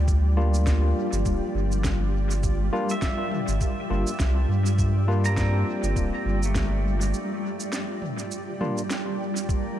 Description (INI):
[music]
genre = ambient dub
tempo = 102 BPM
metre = 4/4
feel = swing 57% on 16ths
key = G dorian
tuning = A4 = 440 Hz
[part]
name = granular cloud pad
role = sustained chords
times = 0.0-9.8 s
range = G3 to G5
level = -30 LUFS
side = equal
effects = built-in reverb
[part]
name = warm sub bass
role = bass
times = 0.0-7.1 s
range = D1 to G2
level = -23 LUFS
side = equal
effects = none
[part]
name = electronic kick drum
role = drums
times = 0.1-9.6 s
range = none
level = -27 LUFS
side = equal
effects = none
[part]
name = organic electronic drum kit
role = drums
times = 0.1-9.6 s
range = shaker, snare drum, toms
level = -35 LUFS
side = right 1 dB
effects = dub echo
[part]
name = barky tine electric piano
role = stabs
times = 0.4-8.8 s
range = G3 to F4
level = -31 LUFS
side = left 2 dB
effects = overdrive, dub echo
[part]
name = pedal steel guitar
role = arpeggios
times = 2.9-8.4 s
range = A3 to Bb5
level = -35 LUFS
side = right 2 dB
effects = dub echo
[part]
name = drifting glass-harmonics texture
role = texture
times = 9.6-9.8 s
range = Bb3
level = -38 LUFS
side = left 4 dB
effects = chorus, built-in reverb
[sound]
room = little or no reverb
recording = none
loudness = -22 LUFS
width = side -12 dB against mid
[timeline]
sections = 0.0-9.5 A section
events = filter sweep on tine electric piano 0.0-9.5; break 7.1-9.5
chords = 0.0 Gm7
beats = | 0.08 0.67 1.26 1.84 | 2.43 3.02 3.61 4.20 | 4.79 5.37 5.96 6.55 | 7.14 7.73 8.31 8.90 | 9.49